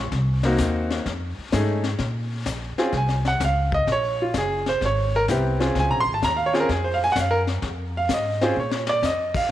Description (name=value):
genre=jazz piano trio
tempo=128 BPM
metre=4/4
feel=swing 68% on 8ths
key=Bb minor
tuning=A4 = 440 Hz
part: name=clear baby grand piano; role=melody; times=0.0-9.5 s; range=A3 to C6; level=-22 LUFS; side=right 1 dB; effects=none
part: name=upright bass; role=bass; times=0.0-9.5 s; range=Gb1 to Bb2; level=-26 LUFS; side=equal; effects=none
part: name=vintage brush drum kit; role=drums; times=0.1-9.5 s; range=brushed snare drum, crash cymbal, hi-hat, kick drum, snare drum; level=-29 LUFS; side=left 4 dB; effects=none
room=moderate echo chamber reverb, RT60 1.9 s, small room ambience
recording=1960s-style stereo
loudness=-20 LUFS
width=side -13 dB against mid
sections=0.0-2.0 A section; 2.0-9.5 A section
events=grand piano solo 0.0-9.5; drum fill 8.6-9.0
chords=0.1 Cm7b5; 1.1 F7alt; 2.0 Bbm7